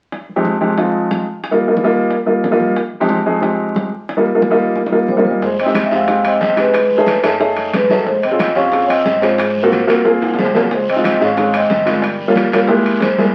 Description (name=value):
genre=Afro-Cuban jazz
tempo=181 BPM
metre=4/4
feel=straight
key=F minor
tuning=A4 = 445 Hz
part: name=bongos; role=percussion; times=0.1-13.3 s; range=none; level=-29 LUFS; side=equal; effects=none
part: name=congas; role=percussion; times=0.1-13.3 s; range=none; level=-26 LUFS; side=equal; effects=none
part: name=warm grand piano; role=accompaniment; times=0.4-13.3 s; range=F2 to Ab4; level=-17 LUFS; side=equal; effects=none
part: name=vibraphone with medium mallets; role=melody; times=5.1-13.3 s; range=A4 to F5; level=-19 LUFS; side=equal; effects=none
part: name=warm trombone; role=second line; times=5.1-13.3 s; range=F#3 to Db4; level=-25 LUFS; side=equal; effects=none
part: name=upright bass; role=bass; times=5.4-13.3 s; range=F1 to Ab2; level=-37 LUFS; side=equal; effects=none
part: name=guiro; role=percussion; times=5.4-13.3 s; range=none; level=-30 LUFS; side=equal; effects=none
part: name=timbales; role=percussion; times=5.6-13.2 s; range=none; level=-27 LUFS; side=equal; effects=none
room=wet studio reverb, RT60 0.6 s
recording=very old 78 rpm record, vinyl crackle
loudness=-15 LUFS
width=mono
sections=0.1-5.4 A section; 5.4-13.3 B section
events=drum fill 4.8-5.4, 10.2-10.7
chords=0.1 Fm9; 1.4 Ebadd9; 2.8 Fm9; 4.1 Ebadd9; 5.4 Fm7; 6.7 B13; 8.1 Bbm9; 9.4 Ab13; 10.7 Dbmaj9; 12.0 Gm7b5; 12.7 C7b13